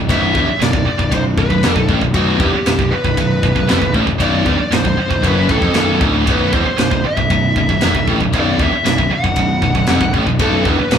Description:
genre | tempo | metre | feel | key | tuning
heavy metal | 116 BPM | 4/4 | straight | B phrygian | A4 = 440 Hz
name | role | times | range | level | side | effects
heavy high-gain guitar | riff | 0.0-11.0 s | B1 to A2 | -19 LUFS | right 6 dB | distortion
tight distorted guitar | riff | 0.0-11.0 s | B1 to A2 | -20 LUFS | left 7 dB | distortion
fuzz picked electric bass | bass | 0.0-11.0 s | B0 to A1 | -19 LUFS | equal | overdrive
high-gain lead guitar | melody | 0.1-11.0 s | F#4 to F#5 | -20 LUFS | equal | distortion
modern studio drum kit | drums | 0.1-11.0 s | kick drum, ride cymbal, snare drum | -19 LUFS | equal | none
room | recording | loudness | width
moderate large studio reverb, RT60 1.3 s | band playing live in one room, small room ambience | -12 LUFS | side -8 dB against mid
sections
0.0-11.0 A section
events
none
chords
none

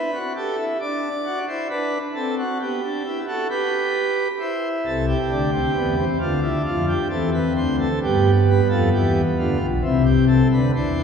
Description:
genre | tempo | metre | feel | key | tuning
classical, baroque-style 3-part fugue for pipe organ | 67 BPM | 4/4 | straight | C major | A4 = 440 Hz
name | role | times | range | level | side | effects
pipe organ, principal chorus | solo | 0.0-11.0 s | B1 to D5 | -19 LUFS | equal | none
room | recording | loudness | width
wet church reverb, RT60 3.7 s | heard from further back in the room | -19 LUFS | side -6 dB against mid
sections
0.0-11.0 A section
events
none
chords
0.0 A7(no3); 0.8 D7; 2.6 G/B; 4.4 C; 6.2 Dm7; 8.0 G7; 9.8 C

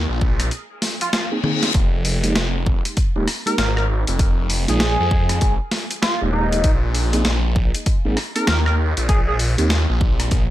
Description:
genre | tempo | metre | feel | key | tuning
glitch hop | 98 BPM | 4/4 | swing 62% on 16ths | F minor | A4 = 440 Hz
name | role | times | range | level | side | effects
phased detuned saw bass | bass | 0.0-10.5 s | Eb1 to F2 | -20 LUFS | equal | phaser, overdrive
electronic kick drum | drums | 0.2-10.5 s | none | -18 LUFS | equal | none
boom bap sampler-style drum kit | drums | 0.4-10.5 s | hi-hat, rim click, snare drum, toms | -23 LUFS | left 1 dB | none
reverse cymbal | sound effects | 0.9-1.7 s | none | -25 LUFS | left 6 dB | none
sync lead | melody | 1.0-9.3 s | Eb4 to Bb4 | -26 LUFS | equal | analog chorus, tape echo
mellow tonewheel organ | stabs | 1.3-9.7 s | Ab3 to Ab4 | -25 LUFS | right 2 dB | chorus vibrato, stopped rotary speaker, sidechain pumping, tape echo
room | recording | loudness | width
little or no reverb | none | -17 LUFS | side -14 dB against mid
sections
0.0-10.5 A section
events
reverse cymbal 0.9-1.7; drum fill 1.4-1.7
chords
0.0 Bb9sus4; 1.7 Fm11; 6.6 Bb9sus4

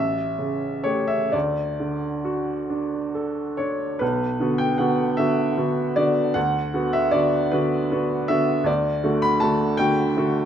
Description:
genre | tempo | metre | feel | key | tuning
classical, romantic nocturne for solo piano | 42-55 BPM (dotted quarters) | 6/8 | rubato | D major, B minor from 4.0 s | A4 = 440 Hz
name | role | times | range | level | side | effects
clear upright piano | solo | 0.0-10.5 s | A1 to B5 | -20 LUFS | equal | none
room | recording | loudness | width
moderate scoring stage reverb, RT60 1.8 s | close, detailed microphones | -20 LUFS | side -9 dB against mid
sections
0.0-4.0 A section; 4.0-10.5 B section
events
none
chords
0.0 A7; 1.3 D; 4.0 Bm; 6.4 Bm/D; 8.7 D

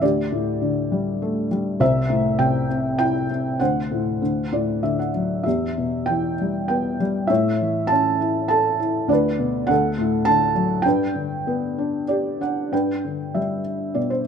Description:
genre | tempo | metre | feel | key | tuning
classical, lyrical solo piano | 100 BPM | 3/4 | rubato | G major | A4 = 438 Hz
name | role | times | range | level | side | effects
felt-muted upright piano | solo | 0.0-14.3 s | C2 to A5 | -19 LUFS | equal | none
room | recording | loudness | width
light reverb | close, detailed microphones | -19 LUFS | side -7 dB against mid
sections
0.0-12.7 A section; 12.7-14.3 B section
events
felt piano fill 4.2-5.5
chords
0.0 Dsus4; 1.8 Am/C; 3.6 D5; 4.2 D; 5.5 Em; 7.3 A; 9.1 Bm/D; 9.7 D; 10.8 G

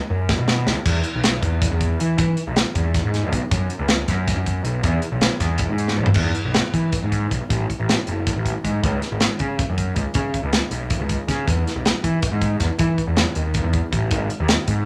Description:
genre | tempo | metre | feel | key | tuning
math rock and midwest emo | 317 BPM (eighths) | 7/8 | straight | E major | A4 = 439 Hz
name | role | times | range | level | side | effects
fuzz picked electric bass | bass | 0.1-14.8 s | F#1 to E3 | -24 LUFS | equal | overdrive
crisp fusion drum kit | drums | 0.3-14.8 s | crash cymbal, hi-hat, kick drum, snare drum, toms | -24 LUFS | equal | none
room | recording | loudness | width
light reverb | none | -21 LUFS | mono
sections
0.0-6.2 A section; 6.2-14.9 B section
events
drum fill 0.0-0.9, 5.9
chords
none

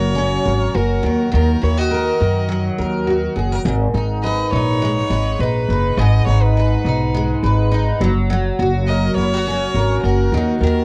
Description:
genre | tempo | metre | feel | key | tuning
acoustic pop | 103 BPM | 4/4 | swing 55% on 16ths | G# minor | A4 = 445 Hz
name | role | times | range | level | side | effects
clear violin | melody | 0.0-10.8 s | A#4 to D#5 | -27 LUFS | equal | cassette tape, plate reverb, analog delay
picked steel-string acoustic guitar | accompaniment | 0.0-10.8 s | G#2 to B4 | -22 LUFS | equal | double-tracked, cassette tape, plate reverb
upright bass | bass | 0.0-10.8 s | F#1 to F#2 | -20 LUFS | equal | none
room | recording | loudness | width
light reverb | home recording on cassette | -18 LUFS | mono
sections
0.0-10.8 A section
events
none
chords
0.0 F#; 1.0 D#m; 3.6 G#m; 8.0 F#; 10.3 D#m

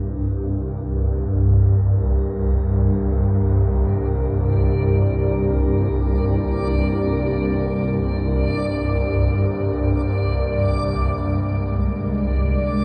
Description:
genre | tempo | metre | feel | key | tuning
dark ambient drone | free time | none | none | unclear | A4 = 441 Hz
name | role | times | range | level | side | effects
deep dark ambient pad | sustained chords | 0.0-12.8 s | D4 to Bb4 | -29 LUFS | equal | chorus, built-in reverb, shimmer reverb
swarming drone | drone | 0.0-12.8 s | C2 to Ab3 | -21 LUFS | equal | built-in reverb
backwards swelling texture | texture | 4.5-12.8 s | D5 | -31 LUFS | equal | built-in reverb, shimmer reverb
room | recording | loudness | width
wet cathedral reverb, RT60 5.5 s | dark, warm production | -20 LUFS | mono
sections
0.0-11.2 A section; 11.2-12.8 B section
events
filter sweep on synth drone 0.0-11.2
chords
0.0 Gmadd11/C; 11.2 Absus2

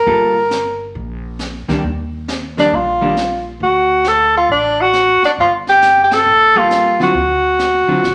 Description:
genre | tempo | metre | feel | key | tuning
jazz, small-group swing and bop | 136 BPM | 4/4 | swing 66% on 8ths | G minor | A4 = 441 Hz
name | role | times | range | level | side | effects
mellow tenor saxophone | melody | 0.0-8.1 s | D4 to Bb4 | -14 LUFS | equal | none
upright bass | bass | 0.0-8.1 s | G1 to Eb2 | -31 LUFS | equal | none
vintage hollow-body jazz guitar | accompaniment | 0.1-3.2, 6.6-8.0 s | D3 to A4 | -22 LUFS | equal | none
jazz brush drum kit | drums | 0.1-8.1 s | brushed snare drum, hi-hat, kick drum, ride cymbal, snare drum | -30 LUFS | equal | none
room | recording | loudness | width
wet large studio reverb, RT60 1.0 s | none | -14 LUFS | mono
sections
0.0-8.1 A section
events
band accent 6.0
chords
0.0 Gm9; 1.8 Ebmaj7; 3.6 D; 5.4 Gm9; 7.1 D7#9

